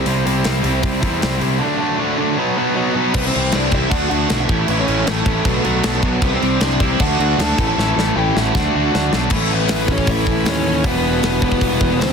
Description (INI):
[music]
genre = punk rock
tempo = 156 BPM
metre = 4/4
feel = straight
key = unclear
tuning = A4 = 440 Hz
[part]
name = distorted electric guitar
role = riff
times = 0.0-12.1 s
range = A2 to G4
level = -21 LUFS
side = left 15 dB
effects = overdrive
[part]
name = tight distorted guitar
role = riff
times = 0.0-12.1 s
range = E2 to D4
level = -22 LUFS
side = right 17 dB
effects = distortion
[part]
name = fuzz picked electric bass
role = bass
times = 0.0-12.1 s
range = E1 to E2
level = -21 LUFS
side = equal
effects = overdrive
[part]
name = tight metal drum kit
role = drums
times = 0.1-12.1 s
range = crash cymbal, hi-hat, kick drum, snare drum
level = -21 LUFS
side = equal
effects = soft clipping on kick, soft clipping on snare
[part]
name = biting overdriven guitar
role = melody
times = 3.2-12.1 s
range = A3 to A5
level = -22 LUFS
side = left 1 dB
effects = digital delay
[sound]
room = little or no reverb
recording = dense, heavily limited modern master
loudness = -15 LUFS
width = side -6 dB against mid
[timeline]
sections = 0.0-3.2 A section; 3.2-9.3 B section; 9.3-12.1 C section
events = drum fill 7.8-9.3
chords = 0.0 C; 1.6 D; 2.4 B; 3.2 C; 3.9 D; 4.5 A; 5.5 Bm; 6.2 C; 7.0 D; 7.6 A; 8.5 D; 9.3 A; 10.8 Em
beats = | 0.08 0.46 0.85 1.23 | 1.62 2.00 2.39 2.77 | 3.16 3.54 3.93 4.32 | 4.70 5.08 5.47 5.85 | 6.24 6.62 7.01 7.39 | 7.78 8.16 8.54 8.93 | 9.31 9.70 10.08 10.46 | 10.85 11.23 11.62 12.00